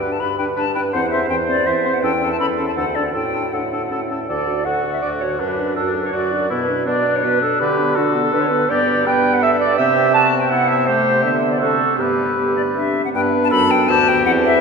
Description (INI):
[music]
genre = quick classical-period movement for wind quintet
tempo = 163 BPM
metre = 3/4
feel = straight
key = D major, G major from 8.7 s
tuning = A4 = 440 Hz
[part]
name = silver concert flute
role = melody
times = 0.0-14.6 s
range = F#4 to B5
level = -22 LUFS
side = left 6 dB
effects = none
[part]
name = warm oboe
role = second line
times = 0.0-14.6 s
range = D4 to C5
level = -22 LUFS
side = left 3 dB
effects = none
[part]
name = dark French horn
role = accompaniment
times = 0.0-14.6 s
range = A3 to A4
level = -25 LUFS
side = left 1 dB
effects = none
[part]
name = mellow clarinet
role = accompaniment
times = 0.0-14.6 s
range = D4 to A5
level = -20 LUFS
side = right 6 dB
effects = none
[part]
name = mellow bassoon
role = bass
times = 0.0-14.6 s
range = D2 to D3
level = -23 LUFS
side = right 1 dB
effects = none
[sound]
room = wet cathedral reverb, RT60 6.0 s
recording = recorded in a church or concert hall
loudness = -15 LUFS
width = side -5 dB against mid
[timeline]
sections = 0.0-4.3 A section; 4.3-13.1 B section; 13.1-14.6 A section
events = none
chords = 0.0 G; 0.9 C/E; 2.0 A/E; 2.8 D; 3.1 D/A; 3.9 A; 4.3 D; 5.4 D/F#; 6.5 Bm; 7.6 Bm/D; 8.7 G; 9.8 C; 10.9 Am/C; 11.2 Bmadd11/D; 11.6 D7; 12.0 G